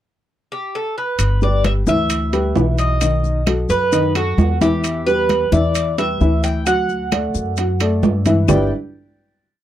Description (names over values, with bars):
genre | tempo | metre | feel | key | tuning
latin, Cuban son and guajira | 132 BPM | 4/4 | straight | G major | A4 = 438 Hz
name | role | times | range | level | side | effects
Cuban tres | melody | 0.5-8.7 s | F#4 to G5 | -21 LUFS | right 2 dB | none
upright bass | bass | 1.2-8.7 s | G1 to G2 | -19 LUFS | equal | none
claves | percussion | 1.2-8.6 s | none | -30 LUFS | left 26 dB | none
congas | percussion | 1.2-8.6 s | none | -22 LUFS | left 1 dB | none
maracas | percussion | 1.2-8.6 s | none | -32 LUFS | left 29 dB | none
timbales | percussion | 1.2-8.6 s | none | -24 LUFS | right 8 dB | none
dark grand piano | arpeggios | 1.4-8.7 s | D#3 to F#5 | -19 LUFS | left 1 dB | none
room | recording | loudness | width
little or no reverb | dry, close 1970s-style studio recording | -15 LUFS | side -12 dB against mid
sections
0.0-1.2 pickup bar; 1.2-8.5 verse; 8.5-9.6 final chord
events
none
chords
0.0 N.C.; 1.2 G6; 3.0 B7; 4.8 Em; 6.7 D; 8.5 G6